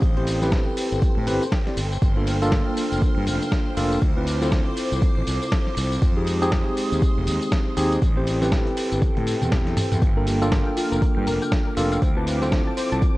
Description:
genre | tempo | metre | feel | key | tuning
deep house | 120 BPM | 4/4 | swing 60% on 16ths | G dorian | A4 = 440 Hz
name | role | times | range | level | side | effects
airy breathy pad | sustained chords | 0.0-13.2 s | Ab3 to F6 | -32 LUFS | equal | chorus, sidechain pumping
fuzz fingered electric bass | bass | 0.0-13.0 s | F1 to A2 | -26 LUFS | equal | overdrive, tube saturation, sidechain pumping
dusty soul sampler-style drum kit | drums | 0.0-13.1 s | hi-hat, snare drum, tambourine, toms | -29 LUFS | equal | none
electronic kick drum | drums | 0.0-13.1 s | none | -21 LUFS | equal | overdrive
string machine, violins | texture | 0.0-13.2 s | C5 to D6 | -37 LUFS | equal | ensemble chorus, sidechain pumping
tine electric piano | stabs | 0.2-13.2 s | Bb3 to D5 | -25 LUFS | equal | medium tremolo, sidechain pumping, analog delay
soft round pluck | arpeggios | 10.0-13.1 s | F4 to A5 | -30 LUFS | left 2 dB | chorus, vintage 12-bit sampler grit, sidechain pumping, analog delay
room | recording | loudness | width
light reverb | cassette tape | -19 LUFS | side -19 dB against mid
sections
0.0-13.2 A section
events
drum fill 9.0-10.0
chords
0.0 Am7; 2.0 Gm7; 4.0 Dm7; 6.0 Fm7; 8.0 Am7; 10.0 Gm7; 12.0 Dm7

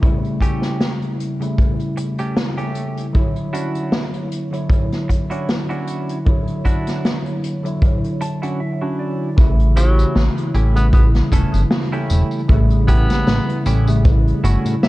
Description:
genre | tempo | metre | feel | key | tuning
vaporwave | 77 BPM | 4/4 | swing 55% on 16ths | unclear | A4 = 439 Hz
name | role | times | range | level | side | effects
bell-like tine electric piano | accompaniment | 0.0-14.9 s | C#3 to C#5 | -22 LUFS | equal | analog chorus, analog delay
kick drum | drums | 0.0-14.2 s | none | -15 LUFS | equal | none
unplugged drum kit | drums | 0.0-14.9 s | hi-hat, snare drum, tambourine | -23 LUFS | equal | gated reverb
semi-hollow electric guitar | riff | 0.4-14.9 s | A3 to A5 | -28 LUFS | right 2 dB | wide subtle chorus, low-pass filter, analog delay
chorused synth bass | bass | 9.4-14.8 s | E1 to A2 | -15 LUFS | equal | none
mellow tenor saxophone | melody | 9.8-13.7 s | F#3 to B3 | -27 LUFS | equal | tape echo
room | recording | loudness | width
studio ambience | cassette tape | -16 LUFS | side -18 dB against mid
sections
0.0-9.4 A section; 9.4-14.9 B section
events
clean electric guitar fill 7.8-9.4, 14.4-14.9; break 8.6-9.4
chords
0.0 A7; 3.1 Dmaj9; 9.4 A7

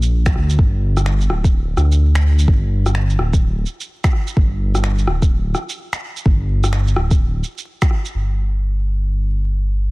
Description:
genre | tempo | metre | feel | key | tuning
future garage | 127 BPM | 4/4 | swing 62% on 16ths | unclear | A4 = 440 Hz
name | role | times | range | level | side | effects
dark detuned saw bass | bass | 0.0-9.9 s | D1 to D2 | -16 LUFS | equal | sidechain pumping
electronic shaker, finger snaps and rim click | drums | 0.0-8.1 s | none | -25 LUFS | equal | soft clipping on snare
electronic kick drum | drums | 0.3-7.9 s | none | -15 LUFS | equal | none
room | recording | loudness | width
little or no reverb | dense, heavily limited modern master, vinyl crackle | -15 LUFS | side -23 dB against mid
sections
0.0-8.1 A section; 8.1-9.9 B section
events
none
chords
none

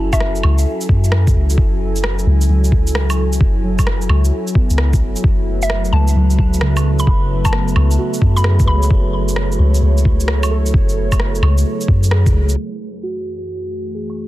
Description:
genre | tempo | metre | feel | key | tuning
future garage | 131 BPM | 4/4 | swing 66% on 16ths | F# minor | A4 = 440 Hz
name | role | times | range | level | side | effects
muted felt-like synth keys | accompaniment | 0.0-14.3 s | C#3 to C#5 | -24 LUFS | right 2 dB | chorus, sidechain pumping, low-pass filter, tape echo
warbly tape-like pad | sustained chords | 0.0-14.3 s | F#2 to G#5 | -24 LUFS | left 1 dB | chorus, built-in reverb, sidechain pumping
soft 808-style bass | bass | 0.0-12.6 s | E1 to F#2 | -15 LUFS | equal | none
mallet-like synth pluck | melody | 0.1-0.8, 5.6-9.1 s | E5 to B5 | -25 LUFS | equal | chorus, tape echo
electronic kick drum | drums | 0.1-12.3 s | none | -15 LUFS | equal | none
electronic shaker, woodblock and rim click | drums | 0.1-14.2 s | none | -24 LUFS | right 1 dB | low-pass filter on perc, soft clipping on snare, low-pass filter on snare, low-pass filter on room
room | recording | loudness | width
digital ambience | dense, heavily limited modern master, low-pass filter | -13 LUFS | side -16 dB against mid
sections
0.0-12.6 A section; 12.6-14.3 B section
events
band accent 12.1; filter sweep on drum 12.6-14.3; filter sweep on ambient pad 12.6-14.3; filter sweep 12.6-14.3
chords
0.0 F#m9; 5.2 Esus4/F#; 12.6 F#m9

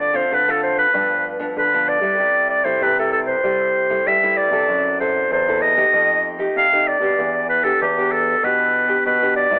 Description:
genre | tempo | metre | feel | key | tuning
samba and choro | 96 BPM | 4/4 | straight | unclear | A4 = 440 Hz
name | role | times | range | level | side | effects
bright clarinet | melody | 0.0-9.6 s | G4 to F5 | -19 LUFS | equal | cassette tape, analog delay
nylon-string guitar | accompaniment | 0.0-9.6 s | G2 to A4 | -28 LUFS | equal | cassette tape
nylon-string guitar | bass | 0.0-9.6 s | E2 to G3 | -28 LUFS | equal | none
room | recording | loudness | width
light reverb | home recording on cassette, telephone sound | -18 LUFS | mono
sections
0.0-9.6 A section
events
none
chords
0.0 Dm7; 0.9 G7; 2.2 C6; 4.7 F#m7b5; 5.9 F9; 7.2 Em7

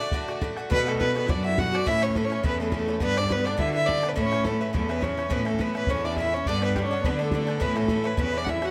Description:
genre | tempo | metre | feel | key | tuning
celtic folk, Celtic reel | 209 BPM | 4/4 | swing 55% on 8ths | unclear | A4 = 442 Hz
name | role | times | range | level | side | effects
dark fiddle | melody | 0.0-8.7 s | G4 to F#5 | -30 LUFS | equal | none
clear viola | second line | 0.0-8.7 s | G3 to F#4 | -35 LUFS | equal | none
Irish bouzouki | accompaniment | 0.0-8.7 s | G2 to F#4 | -33 LUFS | equal | none
bodhran | percussion | 0.1-8.7 s | none | -33 LUFS | equal | none
rich cello | bass | 0.7-8.7 s | E2 to D3 | -31 LUFS | equal | none
room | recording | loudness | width
moderate studio reverb, RT60 0.5 s | close, detailed microphones | -25 LUFS | mono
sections
0.7-8.7 A section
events
none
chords
0.0 D; 0.7 Bm; 1.9 A; 3.0 G; 4.2 A; 6.5 G; 7.6 A

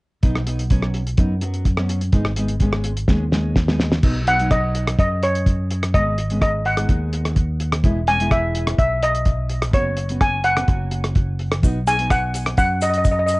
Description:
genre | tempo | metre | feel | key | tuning
calypso | 126 BPM | 4/4 | straight | B major | A4 = 440 Hz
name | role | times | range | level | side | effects
nylon-string guitar | accompaniment | 0.2-12.6 s | F#3 to G#4 | -26 LUFS | equal | cassette tape, plate reverb
fingered electric bass | bass | 0.2-13.4 s | E1 to F#2 | -22 LUFS | equal | none
cloth-damped thuddy drum kit | drums | 0.2-13.4 s | crash cymbal, hi-hat, kick drum, rim click, snare drum | -19 LUFS | equal | cassette tape
steel pan | melody | 4.3-13.4 s | C#5 to G#5 | -20 LUFS | equal | cassette tape
egg shaker | percussion | 11.6-13.4 s | none | -38 LUFS | left 9 dB | none
room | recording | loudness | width
light reverb | home recording on cassette, nothing above 10.6 kHz | -17 LUFS | side -23 dB against mid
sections
0.2-4.0 A section; 4.0-13.4 B section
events
drum fill 3.1-4.0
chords
0.2 B; 2.1 G#m; 4.0 B; 5.9 G#m7; 7.8 E; 9.7 F#sus4; 10.7 F#; 11.6 B

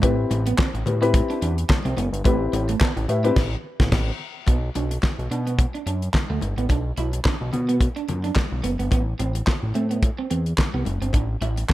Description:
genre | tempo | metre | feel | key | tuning
early-eighties boogie funk | 108 BPM | 4/4 | swing 56% on 16ths | B phrygian | A4 = 441 Hz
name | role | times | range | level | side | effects
dark concert grand piano | accompaniment | 0.0-3.4 s | C4 to E5 | -23 LUFS | left 4 dB | none
electric guitar at the edge of break-up | riff | 0.0-11.7 s | A3 to E4 | -29 LUFS | right 6 dB | analog chorus
fat analog bass | bass | 0.0-11.6 s | F#1 to B2 | -24 LUFS | equal | none
damped 70s drum kit | drums | 0.0-11.7 s | crash cymbal, handclaps, hi-hat, kick drum, snare drum | -22 LUFS | equal | gated reverb
congas | percussion | 0.0-11.7 s | none | -34 LUFS | left 5 dB | none
room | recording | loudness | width
little or no reverb | none | -20 LUFS | side -16 dB against mid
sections
0.0-4.5 A section; 4.5-11.7 B section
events
band accent 3.4-4.5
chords
0.0 Am9; 4.5 Bm; 8.9 Am

